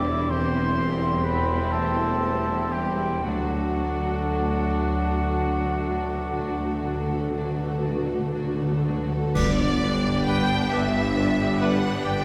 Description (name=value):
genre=classical, slow romantic movement for symphony orchestra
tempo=38-46 BPM (dotted quarters)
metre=12/8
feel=rubato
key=G major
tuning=A4 = 440 Hz
part: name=clear symphonic violin section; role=melody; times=0.0-12.2 s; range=E4 to G5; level=-36 LUFS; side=equal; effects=none
part: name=concert flute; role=second line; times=0.0-12.1 s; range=F#5 to D6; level=-34 LUFS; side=equal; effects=none
part: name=mellow oboe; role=second line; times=0.0-12.2 s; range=F#4 to D5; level=-39 LUFS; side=equal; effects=none
part: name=warm studio violin section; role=second line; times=0.0-12.2 s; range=C4 to B4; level=-40 LUFS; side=equal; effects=none
part: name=rich symphonic viola section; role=accompaniment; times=0.0-12.2 s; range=E3 to D4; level=-37 LUFS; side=equal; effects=none
part: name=dark French horn section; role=sustained chords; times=0.0-11.8 s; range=F#3 to G4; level=-36 LUFS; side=equal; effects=none
part: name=dark trombone section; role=sustained chords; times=0.0-11.8 s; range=D3 to A3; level=-39 LUFS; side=equal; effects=none
part: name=concert harp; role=arpeggios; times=0.0-12.2 s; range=G2 to B5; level=-38 LUFS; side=equal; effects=none
part: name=clear symphonic double bass section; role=bass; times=0.0-12.2 s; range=E1 to D2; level=-32 LUFS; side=equal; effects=none
part: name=mellow tuba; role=bass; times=0.0-12.2 s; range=E1 to D2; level=-33 LUFS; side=equal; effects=none
part: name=rich symphonic cello section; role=bass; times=0.0-12.2 s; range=D2 to G2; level=-34 LUFS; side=equal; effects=none
part: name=mellow trumpet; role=stabs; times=0.3-11.8 s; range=C4 to B4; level=-36 LUFS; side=equal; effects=none
part: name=timpani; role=percussion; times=3.3-10.7 s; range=G2 to D3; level=-32 LUFS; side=equal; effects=none
part: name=warm clarinet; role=second line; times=9.3-12.2 s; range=B4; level=-37 LUFS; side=equal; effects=none
part: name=clash cymbals and concert bass drum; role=percussion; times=9.4-11.1 s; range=none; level=-34 LUFS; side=equal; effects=none
room=wet recital hall reverb, RT60 1.8 s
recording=recorded in a church or concert hall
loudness=-24 LUFS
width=mono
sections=0.0-9.4 A section; 9.4-12.2 B section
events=timpani fill 3.2-9.4; band accent 9.4-10.3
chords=0.0 C/E; 3.2 D; 9.4 G